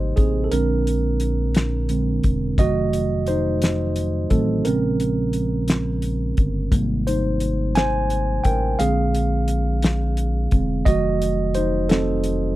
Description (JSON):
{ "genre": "slow six-eight R&B", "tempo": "58 BPM (dotted quarters)", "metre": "6/8", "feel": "straight", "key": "unclear", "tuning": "A4 = 440 Hz", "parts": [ { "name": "mellow tine electric piano", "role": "accompaniment", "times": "0.0-12.6 s", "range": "C3 to Ab5", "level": "-22 LUFS", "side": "right 2 dB", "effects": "none" }, { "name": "smooth synth bass", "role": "bass", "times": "0.0-12.5 s", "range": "Fb1 to Bb1", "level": "-23 LUFS", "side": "equal", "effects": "none" }, { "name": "cloth-damped thuddy drum kit", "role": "drums", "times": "0.2-12.4 s", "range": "hi-hat, kick drum, snare drum", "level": "-20 LUFS", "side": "equal", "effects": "none" } ], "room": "little or no reverb", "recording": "none", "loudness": "-18 LUFS", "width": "side -16 dB against mid", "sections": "0.0-12.6 A section", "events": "tine electric piano solo 0.0-12.6", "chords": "0.0 Abmaj9; 0.5 Bb7; 2.6 F7b9; 4.7 Bbm9; 6.7 Abmaj9; 8.8 Bb7; 10.9 F7b9" }